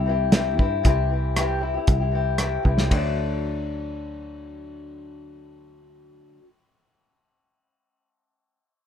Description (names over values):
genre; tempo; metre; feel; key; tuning
folk rock and heartland rock; 116 BPM; 4/4; straight; D mixolydian; A4 = 440 Hz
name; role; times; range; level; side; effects
picked old ladder-braced acoustic guitar; accompaniment; 0.0-6.5 s; C3 to G4; -27 LUFS; left 5 dB; none
picked electric bass; bass; 0.0-6.2 s; C2 to G2; -25 LUFS; equal; none
cloth-damped thuddy drum kit; drums; 0.3-3.0 s; hi-hat, kick drum, ride cymbal, rim click, snare drum; -21 LUFS; equal; none
room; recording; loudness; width
little or no reverb; dark, warm production; -20 LUFS; side -9 dB against mid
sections
0.0-2.9 A section; 2.9-7.1 B section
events
drum fill 2.7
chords
0.0 C; 2.9 D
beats
0.34 | 0.85 1.36 1.88 2.40 | 2.91 3.43 3.95 4.46 | 4.98 5.50 6.02